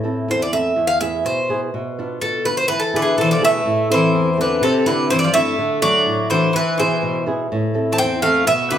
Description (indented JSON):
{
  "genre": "greek folk, Greek bouzouki band",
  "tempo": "125 BPM",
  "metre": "2/4",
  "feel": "straight",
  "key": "A minor from 3.7 s",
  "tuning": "A4 = 439 Hz",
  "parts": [
    { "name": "flamenco guitar", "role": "accompaniment", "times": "0.0-8.8 s", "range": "E2 to A4", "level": "-21 LUFS", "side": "right 1 dB", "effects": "none" },
    { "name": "Greek bouzouki", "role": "melody", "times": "0.3-8.8 s", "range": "G#4 to A5", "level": "-18 LUFS", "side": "equal", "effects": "none" },
    { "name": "Greek bouzouki", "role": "second line", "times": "3.0-8.8 s", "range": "C3 to C4", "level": "-21 LUFS", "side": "left 2 dB", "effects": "none" }
  ],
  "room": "wet large studio reverb, RT60 0.9 s",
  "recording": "band playing live in one room",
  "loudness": "-16 LUFS",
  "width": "side -10 dB against mid",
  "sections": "0.0-3.7 A section; 3.7-8.8 B section",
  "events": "none",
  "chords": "0.0 Am; 0.8 E; 1.7 Bdim; 2.7 E; 3.7 Am; 4.6 Cadd9; 5.6 D; 6.5 E; 7.5 Am"
}